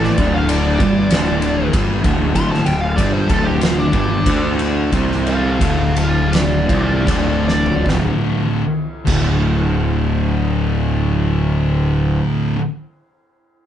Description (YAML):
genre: stoner and doom metal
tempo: 74-97 BPM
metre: 4/4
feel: straight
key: D minor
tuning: A4 = 440 Hz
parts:
  - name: fuzz lead guitar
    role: melody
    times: 0.0-7.9 s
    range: D4 to C6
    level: -22 LUFS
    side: equal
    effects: wah, distortion
  - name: thick fuzz guitar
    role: riff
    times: 0.0-12.6 s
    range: D2 to D4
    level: -20 LUFS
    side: left 5 dB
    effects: distortion
  - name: thick fuzz guitar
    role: riff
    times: 0.0-12.6 s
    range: D2 to D4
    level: -22 LUFS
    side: right 7 dB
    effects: distortion
  - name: fuzz picked electric bass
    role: bass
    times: 0.0-12.2 s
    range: D1 to D2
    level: -19 LUFS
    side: equal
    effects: overdrive, tube saturation
  - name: oversized low-tuned drum kit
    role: drums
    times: 0.0-9.3 s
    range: crash cymbal, kick drum, ride cymbal, snare drum, toms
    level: -20 LUFS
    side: equal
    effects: none
room: moderate studio reverb, RT60 0.6 s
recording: band playing live in one room, nothing above 10.4 kHz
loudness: -14 LUFS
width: side -10 dB against mid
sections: 0.0-7.9 A section; 7.9-11.1 B section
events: lead electric guitar solo 0.0-7.9; slowing down 2.4-7.9; drum fill 7.5-7.9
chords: 0.0 Dm; 7.9 D5